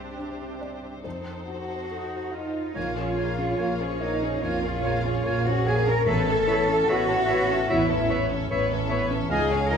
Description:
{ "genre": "cinematic", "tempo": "69-76 BPM", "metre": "4/4", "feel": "rubato", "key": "unclear", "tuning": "A4 = 441 Hz", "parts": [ { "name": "warm studio violin section", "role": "second line", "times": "0.0-9.8 s", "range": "G4 to Eb5", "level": "-36 LUFS", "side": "left 2 dB", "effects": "none" }, { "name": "felt-muted upright piano", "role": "accompaniment", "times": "0.0-9.8 s", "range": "A1 to E5", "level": "-32 LUFS", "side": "left 2 dB", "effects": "none" }, { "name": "warm studio viola section", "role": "accompaniment", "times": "0.0-9.8 s", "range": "Bb3 to F4", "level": "-36 LUFS", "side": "equal", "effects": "none" }, { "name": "mellow large flute ensemble", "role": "second line", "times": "1.5-9.8 s", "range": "Eb5 to Bb5", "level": "-33 LUFS", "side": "equal", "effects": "none" }, { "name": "mellow French horn section", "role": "sustained chords", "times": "1.5-9.8 s", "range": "Eb4 to Bb4", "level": "-29 LUFS", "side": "left 2 dB", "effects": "none" }, { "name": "rich studio cello section", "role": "bass", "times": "1.5-9.8 s", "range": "Eb4 to Bb4", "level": "-29 LUFS", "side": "right 4 dB", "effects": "none" }, { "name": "bright clarinet", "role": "second line", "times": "2.7-9.8 s", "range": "Db5 to Eb5", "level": "-34 LUFS", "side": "left 3 dB", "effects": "none" }, { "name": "rich studio violin section", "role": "melody", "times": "2.8-9.8 s", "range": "Db5 to Ab5", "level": "-32 LUFS", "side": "left 5 dB", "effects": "none" }, { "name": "bright oboe", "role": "second line", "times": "2.8-9.8 s", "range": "E5 to Ab5", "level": "-34 LUFS", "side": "right 2 dB", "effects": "none" }, { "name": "clear studio double bass section", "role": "bass", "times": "2.8-9.8 s", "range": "A1 to Db2", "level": "-29 LUFS", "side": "right 4 dB", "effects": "none" } ], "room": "wet scoring stage reverb, RT60 1.7 s", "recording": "minimal, uncompressed stereo recording", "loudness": "-22 LUFS", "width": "side -7 dB against mid", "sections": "0.0-2.8 A section; 2.8-9.8 A section", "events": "none", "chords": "0.0 Cadd9; 1.0 F7; 2.8 Bbm7; 6.1 Aadd9" }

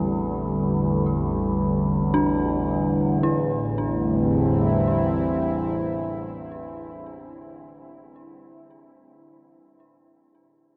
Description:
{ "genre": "dark ambient drone", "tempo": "free time", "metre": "none", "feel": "none", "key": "unclear", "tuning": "A4 = 440 Hz", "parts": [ { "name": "sweeping resonant pad", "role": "sustained chords", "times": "0.0-6.8 s", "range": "A2 to E4", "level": "-26 LUFS", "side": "equal", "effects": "chorus" }, { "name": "dark detuned synth bell", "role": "arpeggios", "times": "0.0-10.1 s", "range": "D4 to G4", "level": "-32 LUFS", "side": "equal", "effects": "chorus, delay" }, { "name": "overtone-sweeping drone", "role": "drone", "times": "0.0-6.2 s", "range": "A1 to E2", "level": "-29 LUFS", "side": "equal", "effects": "chorus, built-in reverb" } ], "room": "moderate huge ambient reverb, RT60 8.4 s", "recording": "none", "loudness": "-23 LUFS", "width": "mono", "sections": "0.0-3.2 A section; 3.2-7.6 B section", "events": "none", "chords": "0.0 Am" }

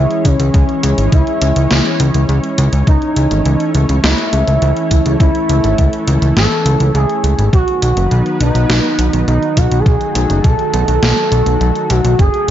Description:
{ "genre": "synthwave", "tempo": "103 BPM", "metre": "4/4", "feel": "straight", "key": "unclear", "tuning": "A4 = 436 Hz", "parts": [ { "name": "expressive portamento lead", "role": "melody", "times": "0.0-12.5 s", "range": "C#4 to A4", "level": "-17 LUFS", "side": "equal", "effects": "wide subtle chorus, tape echo" }, { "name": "analog string pad", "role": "sustained chords", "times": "0.0-12.5 s", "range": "C#3 to C#4", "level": "-20 LUFS", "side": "equal", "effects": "ensemble chorus, vintage 12-bit sampler grit, sidechain pumping" }, { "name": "fat analog bass", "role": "bass", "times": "0.0-12.5 s", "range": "F#1 to C#2", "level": "-13 LUFS", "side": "equal", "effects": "tube saturation" }, { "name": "gated 80s digital drum machine", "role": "drums", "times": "0.1-12.5 s", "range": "hi-hat, snare drum", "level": "-20 LUFS", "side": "equal", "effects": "gated reverb, gated reverb snare, overdrive" }, { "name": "electronic kick drum", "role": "drums", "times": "0.2-12.3 s", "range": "none", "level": "-13 LUFS", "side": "equal", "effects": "overdrive" } ], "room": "light reverb", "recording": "nothing above 7.5 kHz", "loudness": "-11 LUFS", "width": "side -11 dB against mid", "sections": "0.0-12.5 A section", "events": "none", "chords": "0.0 C#m; 2.9 A; 7.5 B" }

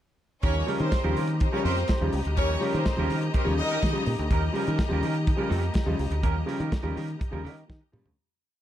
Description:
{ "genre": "disco", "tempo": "124 BPM", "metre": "4/4", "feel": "straight", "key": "unclear", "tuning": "A4 = 442 Hz", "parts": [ { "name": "bright studio violin section", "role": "second line", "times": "0.4-4.0 s", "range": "C4 to Eb5", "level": "-31 LUFS", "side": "left 1 dB", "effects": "none" }, { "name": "clean electric guitar", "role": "accompaniment", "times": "0.4-8.1 s", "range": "Bb3 to Bb4", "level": "-34 LUFS", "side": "right 5 dB", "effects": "none" }, { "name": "clear studio string section", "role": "sustained chords", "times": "0.4-8.1 s", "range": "G4 to Bb5", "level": "-35 LUFS", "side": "left 2 dB", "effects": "none" }, { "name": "fingered electric bass", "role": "bass", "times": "0.4-8.1 s", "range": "Db2 to Eb3", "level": "-28 LUFS", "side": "equal", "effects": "none" }, { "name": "warm soul drum kit", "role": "drums", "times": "0.4-8.2 s", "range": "hi-hat, kick drum, snare drum, toms", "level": "-28 LUFS", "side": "equal", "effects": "none" }, { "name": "clear concert grand piano", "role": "accompaniment", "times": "0.6-8.1 s", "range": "Db3 to G3", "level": "-32 LUFS", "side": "left 2 dB", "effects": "none" } ], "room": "light reverb", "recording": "dark, warm production", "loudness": "-24 LUFS", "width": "side -11 dB against mid", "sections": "0.4-8.2 pre-chorus", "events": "fade-out 6.2-8.2; drum fill 7.7-8.2", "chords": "0.4 Eb7" }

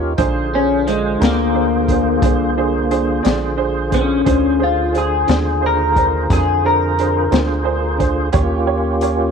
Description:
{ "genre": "slow blues", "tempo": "59 BPM (dotted quarters)", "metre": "12/8", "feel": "straight", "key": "Bb mixolydian", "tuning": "A4 = 440 Hz", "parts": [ { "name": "electric guitar through a small old amp", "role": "melody", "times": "0.0-8.0 s", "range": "Ab3 to Bb4", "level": "-18 LUFS", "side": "left 4 dB", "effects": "analog chorus" }, { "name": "clear upright piano", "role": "accompaniment", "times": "0.0-9.3 s", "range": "D4 to D5", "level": "-22 LUFS", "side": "right 13 dB", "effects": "none" }, { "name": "tonewheel organ", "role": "sustained chords", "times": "0.0-9.3 s", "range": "D3 to C5", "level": "-22 LUFS", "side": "right 1 dB", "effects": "slow rotary speaker, overdrive, chorus vibrato" }, { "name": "tight sequencer bass", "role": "bass", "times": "0.0-9.3 s", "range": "Bb1 to F2", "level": "-21 LUFS", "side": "right 1 dB", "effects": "none" }, { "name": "crunchy breakbeat drum kit", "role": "drums", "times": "0.2-9.2 s", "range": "hi-hat, kick drum, snare drum", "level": "-20 LUFS", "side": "left 2 dB", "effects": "none" } ], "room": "small room ambience", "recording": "1960s-style stereo", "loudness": "-14 LUFS", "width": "side -6 dB against mid", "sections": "0.0-9.3 A section", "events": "clean electric guitar solo 0.0-9.3", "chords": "0.2 Bb9; 8.3 Eb9" }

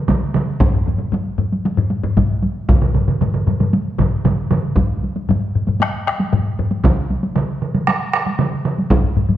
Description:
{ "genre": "japanese traditional, taiko drum ensemble", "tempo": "116 BPM", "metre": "4/4", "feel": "straight", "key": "none", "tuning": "none", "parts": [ { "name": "solo taiko drums", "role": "percussion", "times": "0.1-8.8 s", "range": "none", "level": "-20 LUFS", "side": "right 3 dB", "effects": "none" }, { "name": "taiko ensemble", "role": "percussion", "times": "0.1-9.4 s", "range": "none", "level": "-22 LUFS", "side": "equal", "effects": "none" }, { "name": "taiko ensemble", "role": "percussion", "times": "0.1-9.0 s", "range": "none", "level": "-18 LUFS", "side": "right 1 dB", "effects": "none" }, { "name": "taiko ensemble", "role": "percussion", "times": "0.6-9.4 s", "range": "none", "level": "-19 LUFS", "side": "left 3 dB", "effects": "none" } ], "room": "wet recital hall reverb, RT60 1.5 s", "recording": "dark, warm production", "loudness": "-16 LUFS", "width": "side -12 dB against mid", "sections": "0.0-4.8 A section; 4.8-9.4 B section", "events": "none", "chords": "none" }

